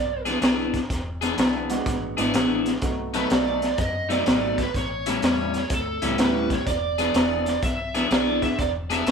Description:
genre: electric blues shuffle.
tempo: 125 BPM.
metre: 4/4.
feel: swing 66% on 8ths.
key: E mixolydian.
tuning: A4 = 441 Hz.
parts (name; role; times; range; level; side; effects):
lead guitar through a small cranked amp; melody; 0.0-0.2, 3.2-9.1 s; A4 to E5; -26 LUFS; right 4 dB; overdrive.
vintage muted fingered electric bass; bass; 0.0-9.1 s; E1 to F#2; -34 LUFS; equal; none.
electric guitar at the edge of break-up; riff; 0.3-9.1 s; A2 to G#4; -26 LUFS; left 3 dB; phaser.
crunchy breakbeat drum kit; drums; 0.3-9.1 s; hi-hat, kick drum, snare drum; -24 LUFS; equal; none.
warm upright piano; accompaniment; 1.7-8.6 s; G#3 to G#4; -31 LUFS; right 4 dB; none.
room: moderate studio reverb, RT60 0.9 s.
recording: band playing live in one room.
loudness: -21 LUFS.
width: side -6 dB against mid.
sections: 0.0-9.1 A section.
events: none.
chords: 0.0 E7; 2.8 B7; 4.7 A7; 6.7 E7.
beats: 0.42 | 0.90 1.38 1.86 2.35 | 2.83 3.31 3.79 4.27 | 4.75 5.23 5.71 6.19 | 6.67 7.15 7.63 8.11 | 8.59 9.07.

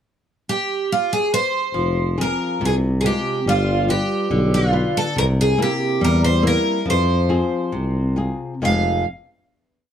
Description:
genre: fado-style ballad.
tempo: 70 BPM.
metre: 2/4.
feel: rubato.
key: F harmonic minor.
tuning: A4 = 440 Hz.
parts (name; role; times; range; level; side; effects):
picked twelve-string acoustic guitar; melody; 0.5-9.0 s; F4 to F5; -20 LUFS; right 2 dB; none.
flamenco guitar; accompaniment; 1.7-9.0 s; F2 to C5; -23 LUFS; left 3 dB; none.
warm tuba; bass; 1.7-9.0 s; F1 to F2; -20 LUFS; equal; none.
room: light reverb.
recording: close, detailed microphones.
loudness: -17 LUFS.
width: side -9 dB against mid.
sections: 0.0-1.7 pickup bar; 1.7-8.6 A section; 8.6-9.9 final chord.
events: none.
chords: 0.0 N.C.; 1.7 Fm; 3.5 G7; 5.2 C7; 6.9 Fm.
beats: | 0.03 0.88 | 1.74 2.61 | 3.46 4.30 | 5.16 6.01 | 6.87 7.74 | 8.63.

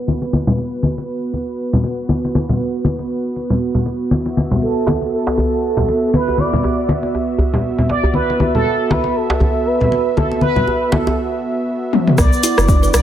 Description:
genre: afro house.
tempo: 119 BPM.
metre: 4/4.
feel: swing 57% on 16ths.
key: B minor.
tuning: A4 = 439 Hz.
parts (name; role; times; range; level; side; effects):
warm analog pad; sustained chords; 0.0-13.0 s; B3 to E5; -21 LUFS; right 2 dB; chorus, sidechain pumping.
congas; percussion; 0.1-11.2 s; none; -18 LUFS; left 1 dB; none.
djembe; percussion; 4.5-11.2 s; none; -21 LUFS; equal; none.
expressive synth lead; melody; 4.6-13.0 s; A4 to D5; -19 LUFS; right 2 dB; wide subtle chorus, dub echo.
deep house drum kit; drums; 11.9-13.0 s; hi-hat, rim click, toms; -15 LUFS; left 2 dB; overdrive.
kalimba; arpeggios; 12.2-12.9 s; B3 to B4; -20 LUFS; right 3 dB; sidechain pumping, dub echo.
warm sub bass; bass; 12.2-13.0 s; F#1 to B1; -16 LUFS; equal; sidechain pumping.
electronic kick drum; drums; 12.2-12.8 s; none; -13 LUFS; equal; overdrive.
egg shaker; percussion; 12.2-13.0 s; none; -25 LUFS; left 3 dB; none.
room: light reverb.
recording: low-pass filter.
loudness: -15 LUFS.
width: side -10 dB against mid.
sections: 0.0-12.2 A section.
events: filter sweep on analog synth pad 0.0-12.2; filter sweep 0.0-12.2; drum fill 11.9.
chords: 0.0 B7(no3); 12.2 Bm.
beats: | 0.08 0.59 1.09 1.59 | 2.10 2.60 3.11 3.61 | 4.12 4.62 5.12 5.63 | 6.13 6.64 7.14 7.64 | 8.15 8.65 9.16 9.66 | 10.17 10.67 11.18 11.68 | 12.18 12.69.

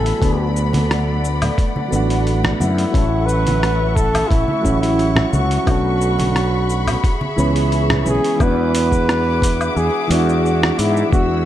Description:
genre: sunset chillout.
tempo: 88 BPM.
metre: 4/4.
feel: straight.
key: unclear.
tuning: A4 = 440 Hz.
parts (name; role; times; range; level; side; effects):
trumpet with bucket mute; melody; 0.0-11.4 s; E4 to B4; -21 LUFS; right 1 dB; tape echo, shimmer reverb.
soft electric-piano-like synth keys; accompaniment; 0.0-11.5 s; E3 to B4; -22 LUFS; moving between left 5 dB and right 5 dB; chorus, auto-pan, shimmer reverb.
warm studio string section; sustained chords; 0.0-11.5 s; A3 to E6; -24 LUFS; left 2 dB; shimmer reverb.
fretless electric bass; bass; 0.0-11.5 s; A1 to G#2; -19 LUFS; equal; none.
dusty soul sampler-style drum kit; drums; 0.1-11.3 s; cabasa, hi-hat, rim click, woodblock; -24 LUFS; left 1 dB; overdrive, studio reverb.
electronic kick drum; drums; 0.2-11.3 s; none; -18 LUFS; equal; overdrive, studio reverb.
congas; percussion; 0.7-8.2 s; none; -25 LUFS; right 1 dB; none.
room: moderate lush hall reverb, RT60 1.7 s.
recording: dark, warm production.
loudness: -15 LUFS.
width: side -12 dB against mid.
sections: 0.0-8.4 A section; 8.4-11.5 B section.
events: none.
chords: 0.2 D6; 2.9 A6; 5.7 Bm9; 7.0 C#m7; 8.4 E9.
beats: | 0.22 0.90 1.58 2.27 | 2.95 3.63 4.31 4.99 | 5.67 6.36 7.04 7.72 | 8.40 9.08 9.77 10.45 | 11.13.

